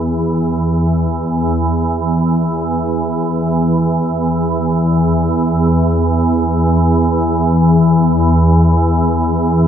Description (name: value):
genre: world meditative, free-time meditation music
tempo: free time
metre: none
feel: none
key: unclear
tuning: A4 = 440 Hz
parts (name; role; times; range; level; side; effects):
- soft additive organ-like pad; solo; 0.0-9.7 s; E2; -12 LUFS; equal; ensemble chorus, built-in reverb, diffuse ambient delay
room: wet cathedral reverb, RT60 7.3 s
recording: none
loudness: -12 LUFS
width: side -9 dB against mid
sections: 0.0-9.7 A section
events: none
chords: none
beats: free time